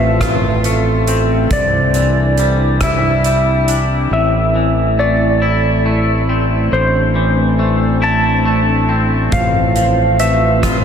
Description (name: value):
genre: post-rock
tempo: 46 BPM (dotted quarters)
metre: 6/8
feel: straight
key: A minor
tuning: A4 = 440 Hz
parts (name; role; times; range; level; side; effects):
- clean lap steel guitar; melody; 0.0-10.8 s; C5 to A5; -18 LUFS; equal; analog delay
- brassy analog pad; sustained chords; 0.0-10.8 s; A3 to F4; -21 LUFS; equal; chorus
- twangy electric guitar; arpeggios; 0.0-10.8 s; A2 to F4; -20 LUFS; left 3 dB; wide subtle chorus, analog delay
- vibraphone with soft mallets; arpeggios; 0.0-4.1, 9.3-10.8 s; A4 to E5; -24 LUFS; right 4 dB; analog delay
- growling fingered electric bass; bass; 0.0-10.8 s; A1 to C2; -16 LUFS; equal; overdrive
- soft-mallet drum kit; drums; 0.2-3.9, 9.3-10.8 s; hi-hat, kick drum, rim click; -20 LUFS; equal; none
room: wet huge ambient reverb, RT60 4.9 s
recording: dreamy mix soaked in reverb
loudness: -12 LUFS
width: side -7 dB against mid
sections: 0.0-4.1 A section; 4.1-10.8 A section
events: none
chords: 0.0 F/A; 1.5 Cadd9; 4.1 Am; 9.3 F/A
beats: 0.20 | 1.51 2.81 | 4.12 5.42 | 6.72 8.03 | 9.33 10.64